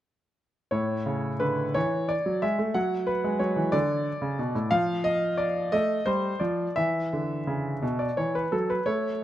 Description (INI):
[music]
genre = classical-period piano sonatina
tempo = 56-62 BPM (dotted quarters)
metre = 6/8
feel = rubato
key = A major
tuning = A4 = 440 Hz
[part]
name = bright baby grand piano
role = solo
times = 0.7-9.2 s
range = A2 to F#5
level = -24 LUFS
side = equal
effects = none
[sound]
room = moderate recital hall reverb, RT60 1.8 s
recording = close, detailed microphones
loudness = -24 LUFS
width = side -12 dB against mid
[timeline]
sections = 0.7-9.2 A section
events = none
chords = 0.7 A; 4.7 F13; 6.8 E5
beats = | 0.72 1.76 | 2.76 3.74 | 4.72 5.73 | 6.77 7.82 | 8.87